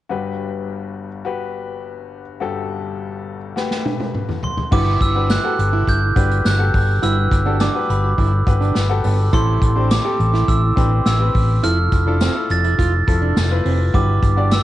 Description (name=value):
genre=piano-driven pop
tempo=104 BPM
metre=4/4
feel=straight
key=G major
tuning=A4 = 440 Hz
part: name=bright grand piano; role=accompaniment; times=0.1-14.6 s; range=G1 to D5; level=-25 LUFS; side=left 7 dB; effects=cassette tape
part: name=unplugged drum kit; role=drums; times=3.6-14.6 s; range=crash cymbal, hi-hat, kick drum, snare drum, toms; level=-20 LUFS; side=equal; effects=cassette tape
part: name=glockenspiel with brass mallets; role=melody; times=4.4-14.6 s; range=B5 to A6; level=-22 LUFS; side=right 2 dB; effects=cassette tape
part: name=fingerpicked plugged-in steel-string acoustic guitar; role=riff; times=4.7-14.5 s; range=B3 to G4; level=-26 LUFS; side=right 8 dB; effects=cassette tape
part: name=fingered electric bass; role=bass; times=4.7-14.6 s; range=F1 to A1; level=-17 LUFS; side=equal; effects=none
part: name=tambourine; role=percussion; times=5.3-14.6 s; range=none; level=-35 LUFS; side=left 12 dB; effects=none
room=small room ambience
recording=home recording on cassette, nothing above 10.8 kHz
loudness=-15 LUFS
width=side -14 dB against mid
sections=0.1-4.7 A section; 4.7-14.6 B section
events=drum fill 3.6-4.7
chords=0.1 Gmaj7; 9.3 Am7; 11.6 Fmaj7; 13.9 Gmaj7